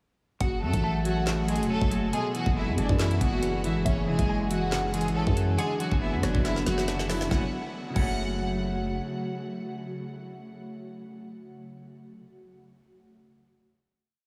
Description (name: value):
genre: hip hop, drill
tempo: 139 BPM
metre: 4/4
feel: half-time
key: F# minor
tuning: A4 = 439 Hz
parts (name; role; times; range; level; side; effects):
- rich studio violin section; melody; 0.4-8.6 s; G#3 to F#5; -35 LUFS; equal; diffuse ambient delay
- hollow square pluck; second line; 0.4-8.6 s; E5 to A5; -44 LUFS; equal; none
- semi-hollow electric guitar; accompaniment; 0.4-12.3 s; B2 to D4; -36 LUFS; equal; none
- glassy FM pad; sustained chords; 1.4-11.5 s; C#3 to A4; -37 LUFS; equal; ensemble chorus, built-in reverb, phaser
- growling 808-style bass; bass; 0.4-9.0 s; E1 to F#2; -32 LUFS; equal; none
- drill drum kit; drums; 0.4-8.1 s; crash cymbal, handclaps, hi-hat, kick drum, rim click, snare drum; -32 LUFS; equal; none
room: wet huge ambient reverb, RT60 7.5 s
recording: dreamy mix soaked in reverb, small room ambience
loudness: -27 LUFS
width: mono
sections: 0.4-7.3 hook; 7.3-10.8 final chord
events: drum fill 6.4-7.3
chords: 0.4 F#m; 2.1 E/F#; 3.9 C#m; 5.6 Bm/F#; 7.3 F#m